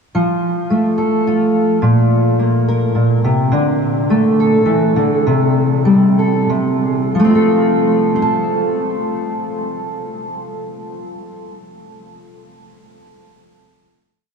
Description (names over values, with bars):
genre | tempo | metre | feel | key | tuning
folk | 89-107 BPM | 3/4 | straight | F major | A4 = 440 Hz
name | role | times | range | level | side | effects
fingerpicked steel-string acoustic guitar | solo | 0.1-12.4 s | Bb2 to A5 | -13 LUFS | equal | wide subtle chorus, analog delay
room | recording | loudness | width
wet huge ambient reverb, RT60 8.8 s | dreamy mix soaked in reverb, cassette tape, small room ambience | -13 LUFS | side -5 dB against mid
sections
0.1-7.1 verse; 7.1-11.2 final chord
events
slowing down 3.5-7.1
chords
0.1 F; 1.8 Bbsus2; 3.5 D5; 5.2 C5; 7.1 F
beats
| 0.14 0.70 1.26 | 1.83 2.39 2.95 | 3.52 4.08 4.66 | 5.25 5.85 6.48 | 7.14 7.81 8.48 | 9.15 9.82 10.50